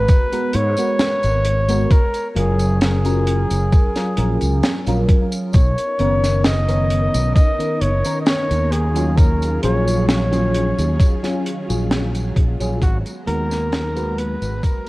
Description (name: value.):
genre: vaporwave.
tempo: 66 BPM.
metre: 4/4.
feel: straight.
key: F# major.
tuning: A4 = 440 Hz.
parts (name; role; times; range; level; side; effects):
warm flugelhorn; melody; 0.0-14.9 s; F#4 to D#5; -23 LUFS; equal; tape echo.
FM electric piano with soft pad layer; accompaniment; 0.0-14.9 s; D#3 to B4; -23 LUFS; equal; phaser, wide subtle chorus.
fretless electric bass; bass; 0.0-14.6 s; F#1 to G#2; -19 LUFS; equal; ensemble chorus.
crisp fusion drum kit; drums; 0.1-14.9 s; hi-hat, snare drum, tambourine; -24 LUFS; equal; none.
electronic kick drum; drums; 0.1-14.8 s; none; -14 LUFS; equal; none.
soft string machine; sustained chords; 5.5-14.9 s; D#3 to A#5; -30 LUFS; equal; ensemble chorus.
room: light reverb, small room reverb.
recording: worn, warbling old tape, cassette tape, warbly pitch drift.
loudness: -16 LUFS.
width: side -20 dB against mid.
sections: 0.0-14.9 A section.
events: fade-out 10.4-14.9.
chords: 0.0 G#m9; 1.9 F#maj7; 5.5 Bmaj9; 8.7 D#m11; 12.8 G#m9.